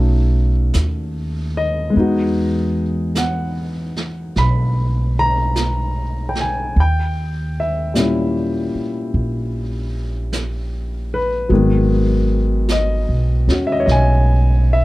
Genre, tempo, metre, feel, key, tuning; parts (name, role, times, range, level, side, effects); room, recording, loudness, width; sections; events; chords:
jazz ballad; 50 BPM; 4/4; swing 67% on 8ths; G# minor; A4 = 440 Hz
warm grand piano; accompaniment; 0.0-14.8 s; A#2 to B5; -20 LUFS; left 2 dB
upright bass; bass; 0.0-14.8 s; G#1 to E2; -18 LUFS; equal
vintage brush drum kit; drums; 0.7-14.8 s; brushed snare drum, hi-hat, snare drum; -27 LUFS; right 2 dB
little or no reverb; -16 LUFS; side -18 dB against mid
0.0-14.8 A section
0.0 B9; 1.9 Emaj9; 6.8 D#7b9; 11.5 G#m7